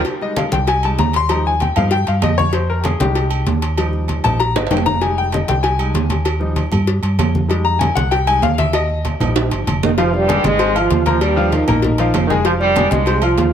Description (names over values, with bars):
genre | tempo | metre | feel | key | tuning
latin, salsa | 194 BPM | 4/4 | straight | F minor | A4 = 437 Hz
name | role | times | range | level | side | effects
cowbell and bongos | percussion | 0.0-13.5 s | none | -25 LUFS | left 3 dB | none
agogo bells and timbales | percussion | 0.1-13.5 s | none | -24 LUFS | right 8 dB | none
congas | percussion | 0.1-13.5 s | none | -24 LUFS | left 1 dB | none
clear baby grand piano | accompaniment | 0.2-13.5 s | F3 to F6 | -19 LUFS | left 4 dB | none
hollow-body short-scale fingered electric bass | bass | 0.5-13.5 s | F1 to G2 | -19 LUFS | right 1 dB | none
mellow trombone section | melody | 9.8-13.5 s | G2 to F4 | -17 LUFS | right 2 dB | none
room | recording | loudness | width
light reverb | none | -14 LUFS | side -9 dB against mid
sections
0.1-10.0 A section; 10.0-13.5 B section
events
grand piano solo 0.1-10.0; drum fill 4.5-5.0, 9.2-10.0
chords
0.1 Abmaj9; 1.3 Ebadd9; 2.5 Fm7; 3.8 Ebadd9; 5.0 Fm7; 6.3 Ebadd9; 7.5 Fm7; 8.7 Ebadd9; 10.0 Fm7; 11.2 Ebadd9; 12.4 Fm7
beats
| 0.06 0.37 0.68 0.99 | 1.30 1.61 1.92 2.23 | 2.54 2.85 3.16 3.47 | 3.78 4.09 4.39 4.71 | 5.01 5.33 5.63 5.95 | 6.25 6.57 6.88 7.18 | 7.49 7.80 8.11 8.42 | 8.73 9.04 9.35 9.66 | 9.97 10.28 10.59 10.90 | 11.21 11.52 11.83 12.14 | 12.45 12.76 13.07 13.38